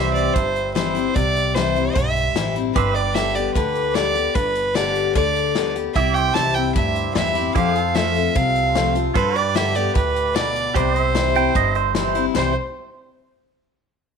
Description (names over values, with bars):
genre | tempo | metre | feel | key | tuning
honky-tonk and classic country | 150 BPM | 4/4 | straight | C major | A4 = 437 Hz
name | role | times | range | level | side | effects
clear fiddle | melody | 0.0-12.5 s | B4 to A5 | -22 LUFS | right 2 dB | none
picked steel-string acoustic guitar | accompaniment | 0.0-12.5 s | F2 to G4 | -23 LUFS | left 10 dB | none
pedal steel guitar | sustained chords | 0.0-12.3 s | E4 to E5 | -26 LUFS | right 16 dB | lush chorus
upright bass | bass | 0.0-12.5 s | G1 to G2 | -26 LUFS | right 2 dB | none
natural country drum kit | drums | 0.2-12.4 s | hi-hat, kick drum, snare drum, splash cymbal | -25 LUFS | left 2 dB | none
pedal steel guitar | second line | 11.4-12.5 s | C5 to G5 | -22 LUFS | right 13 dB | none
room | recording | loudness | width
light reverb, studio reverb | 1960s-style stereo with parts hard left and right | -17 LUFS | side -6 dB against mid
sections
0.0-12.4 A section; 12.4-14.0 B section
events
none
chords
0.0 C; 2.8 G; 6.0 C; 7.6 F; 9.2 G; 10.8 C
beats
0.36 0.76 | 1.16 1.56 1.96 2.36 | 2.76 3.16 3.56 3.96 | 4.36 4.76 5.16 5.56 | 5.96 6.36 6.76 7.16 | 7.56 7.96 8.36 8.76 | 9.15 9.55 9.95 10.35 | 10.75 11.15 11.55 11.95 | 12.35